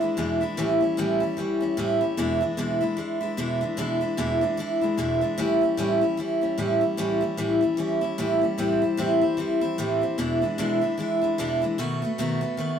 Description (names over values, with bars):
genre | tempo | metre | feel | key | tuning
rock | 150 BPM | 4/4 | swing 60% on 8ths | unclear | A4 = 440 Hz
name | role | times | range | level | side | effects
picked steel-string acoustic guitar | solo | 0.0-12.8 s | E2 to F#4 | -22 LUFS | equal | none
room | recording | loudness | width
moderate small room reverb, RT60 0.6 s | rough rehearsal-room recording | -22 LUFS | side -8 dB against mid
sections
0.0-12.8 A section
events
none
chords
0.0 E7; 0.6 A7; 2.2 E7; 5.4 A7; 8.6 Am7; 10.2 E7; 11.8 B7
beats
0.17 | 0.57 0.97 1.38 1.78 | 2.18 2.58 2.98 3.38 | 3.78 4.18 4.58 4.98 | 5.38 5.78 6.18 6.58 | 6.98 7.38 7.78 8.18 | 8.58 8.98 9.38 9.78 | 10.18 10.58 10.98 11.38 | 11.78 12.18 12.58